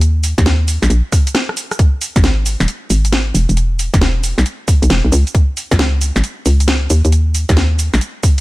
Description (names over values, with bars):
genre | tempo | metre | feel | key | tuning
UK garage, two-step garage | 135 BPM | 4/4 | swing 66% on 16ths | unclear | A4 = 440 Hz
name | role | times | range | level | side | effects
hollow knocking FM bass | bass | 0.0-8.0 s | D#1 to D#2 | -13 LUFS | equal | tube saturation, sidechain pumping
garage drum kit | drums | 0.0-8.4 s | cabasa, hi-hat, rim click, snare drum | -18 LUFS | equal | small room ambience
electronic kick drum | drums | 0.4-8.4 s | none | -12 LUFS | equal | small room ambience
room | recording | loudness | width
little or no reverb | none | -12 LUFS | side -19 dB against mid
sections
0.0-8.4 A section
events
drum fill 1.1-1.8; break 1.3-1.8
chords
none